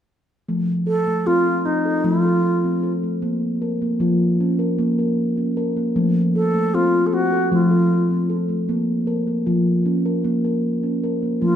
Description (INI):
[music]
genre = world meditative, meditative tuned percussion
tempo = 154 BPM (eighths)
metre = 7/8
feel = straight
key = F phrygian dominant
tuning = A4 = 440 Hz
[part]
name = steel tongue drum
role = arpeggios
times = 0.5-11.6 s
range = F3 to Bb4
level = -18 LUFS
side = left 1 dB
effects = none
[part]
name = bright alto flute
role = melody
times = 0.9-11.6 s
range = Eb4 to A4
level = -20 LUFS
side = right 1 dB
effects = none
[sound]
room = wet echo chamber reverb, RT60 1.6 s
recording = none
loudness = -18 LUFS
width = side -10 dB against mid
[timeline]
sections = 0.5-11.6 A section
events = none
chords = 0.5 F; 3.2 Bbm; 6.0 F; 8.7 Bbm